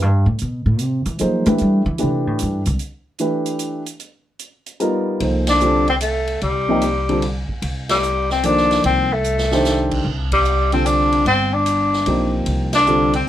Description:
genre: modal jazz.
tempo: 149 BPM.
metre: 3/4.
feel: swing 67% on 8ths.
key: C dorian from 5.2 s.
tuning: A4 = 440 Hz.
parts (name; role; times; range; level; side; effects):
upright bass; bass; 0.0-2.7, 5.2-13.2 s; G1 to A3; -20 LUFS; equal; none.
swinging big-band drum kit; drums; 0.4-13.3 s; crash cymbal, hi-hat, kick drum, ride cymbal, snare drum; -28 LUFS; right 2 dB; none.
dark baby grand piano; accompaniment; 1.2-13.1 s; C3 to C5; -20 LUFS; equal; none.
breathy tenor saxophone; melody; 5.5-13.3 s; G3 to D4; -17 LUFS; left 1 dB; none.
room: light reverb.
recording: none.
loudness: -16 LUFS.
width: side -12 dB against mid.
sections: 0.0-5.2 A section; 5.2-13.3 B section.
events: upright bass solo 0.0-5.2; band accent 5.4, 7.8, 10.2, 12.7; drum fill 9.2-9.6.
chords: 0.0 Am11; 4.0 G7alt; 5.2 Cm69.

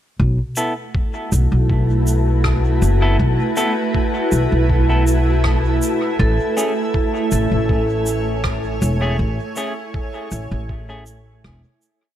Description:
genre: ambient dub.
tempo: 80 BPM.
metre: 4/4.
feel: straight.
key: unclear.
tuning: A4 = 440 Hz.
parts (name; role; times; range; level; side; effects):
granular cloud pad; sustained chords; 1.3-12.2 s; A3 to G#5; -22 LUFS; equal; built-in reverb.
upright bass; bass; 0.2-11.6 s; E1 to B1; -17 LUFS; equal; none.
electronic kick drum; drums; 0.2-11.6 s; none; -21 LUFS; equal; none.
wind-like tuned noise texture; texture; 0.9-12.2 s; A3 to A4; -30 LUFS; equal; built-in reverb.
semi-hollow electric guitar; stabs; 0.6-11.0 s; A3 to A4; -26 LUFS; equal; dub echo.
shaker and rim click; drums; 0.6-12.0 s; none; -29 LUFS; right 1 dB; dub echo.
vibraphone with hard mallets; arpeggios; 6.2-12.2 s; A4; -26 LUFS; right 3 dB; tape echo.
room: light reverb, small room ambience.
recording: none.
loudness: -16 LUFS.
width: side -11 dB against mid.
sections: 0.2-12.2 groove.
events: fade-out 8.2-12.2.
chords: 0.2 B7sus4; 6.2 Amaj7.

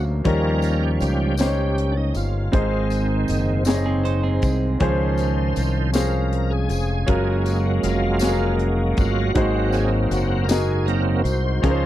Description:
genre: slow gospel.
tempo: 53 BPM (dotted quarters).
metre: 6/8.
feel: straight.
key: unclear.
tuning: A4 = 440 Hz.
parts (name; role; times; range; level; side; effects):
clear grand piano; accompaniment; 0.0-11.9 s; Ab2 to Eb5; -24 LUFS; equal; none.
bright tonewheel organ; sustained chords; 0.0-11.9 s; Eb3 to C5; -25 LUFS; right 2 dB; slow rotary speaker, overdrive, chorus vibrato.
warm French horn section; sustained chords; 0.0-11.9 s; Db3 to F5; -33 LUFS; left 3 dB; none.
modern bright fingered electric bass; bass; 0.0-11.9 s; F1 to Eb2; -22 LUFS; equal; none.
tight funk drum kit; drums; 0.3-11.8 s; hi-hat, kick drum, snare drum; -23 LUFS; left 1 dB; none.
tambourine; percussion; 0.6-11.6 s; none; -38 LUFS; left 7 dB; none.
clean electric guitar; second line; 3.9-4.8 s; C4 to C5; -27 LUFS; right 7 dB; none.
room: little or no reverb.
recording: dry, close 1970s-style studio recording.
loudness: -18 LUFS.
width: side -13 dB against mid.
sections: 0.0-11.9 A section.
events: tonewheel organ solo 0.0-11.9.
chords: 0.3 Eb7; 2.5 Ab; 4.8 Dbmaj7; 7.1 Gbmaj7; 9.4 Ab7.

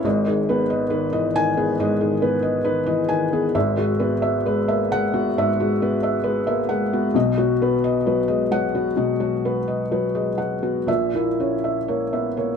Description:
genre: neoclassical minimalist piano.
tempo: 60-70 BPM.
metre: 4/4.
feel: rubato.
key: G# minor.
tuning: A4 = 441 Hz.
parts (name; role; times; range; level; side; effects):
felt-muted upright piano; solo; 0.0-12.6 s; G#1 to G#5; -19 LUFS; left 1 dB; none.
room: light reverb.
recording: minimal, uncompressed stereo recording.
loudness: -19 LUFS.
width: side -6 dB against mid.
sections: 0.0-12.6 A section.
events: none.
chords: 0.0 G#m; 3.5 Eadd9/G#; 7.1 B; 10.9 A#dim.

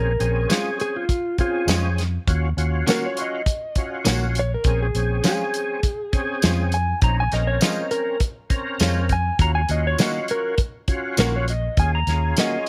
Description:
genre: straight-eighth soul blues.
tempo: 101 BPM.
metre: 4/4.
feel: straight.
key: Bb minor.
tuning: A4 = 440 Hz.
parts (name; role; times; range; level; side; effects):
clean lap steel guitar; melody; 0.0-12.7 s; F4 to Bb5; -27 LUFS; equal; none.
overdriven tonewheel organ; accompaniment; 0.0-12.7 s; C4 to Bb4; -31 LUFS; equal; slow rotary speaker, chorus vibrato.
vintage muted fingered electric bass; bass; 0.0-12.3 s; Bb1 to F2; -24 LUFS; equal; none.
warm soul drum kit; drums; 0.2-12.7 s; hi-hat, kick drum, snare drum, tambourine; -24 LUFS; equal; none.
direct-recorded clean electric guitar; stabs; 0.5-12.6 s; Eb3 to Gb4; -28 LUFS; equal; subtle chorus.
room: little or no reverb.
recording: none.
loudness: -22 LUFS.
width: mono.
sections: 0.0-12.7 A section.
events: electric slide guitar solo 0.0-12.7.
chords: 0.0 Bbm7; 2.3 Ebm7; 4.7 Bbm7; 9.4 Ebm7.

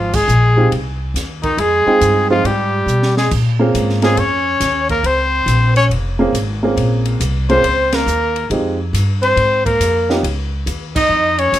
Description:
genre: jazz, small-group swing and bop.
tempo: 139 BPM.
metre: 4/4.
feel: swing 66% on 8ths.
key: F minor.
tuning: A4 = 439 Hz.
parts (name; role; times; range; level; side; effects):
clear trumpet; melody; 0.0-11.6 s; Eb4 to Eb5; -16 LUFS; left 3 dB; plate reverb.
warm tenor saxophone; second line; 0.0-11.6 s; Eb3 to Eb4; -20 LUFS; right 4 dB; none.
upright bass; bass; 0.0-11.6 s; F1 to B2; -18 LUFS; equal; none.
open jazz drum kit; drums; 0.1-11.6 s; crash cymbal, hi-hat, kick drum, ride cymbal, snare drum; -25 LUFS; left 1 dB; none.
warm upright piano; accompaniment; 0.6-10.2 s; Ab3 to G5; -17 LUFS; right 2 dB; none.
room: light reverb.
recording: none.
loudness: -13 LUFS.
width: side -13 dB against mid.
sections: 0.0-11.6 A section.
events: band accent 0.1, 7.9, 10.9; drum fill 2.9-3.3.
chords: 0.0 Fm9; 3.3 Bbm9; 8.5 Fm9; 10.2 Db.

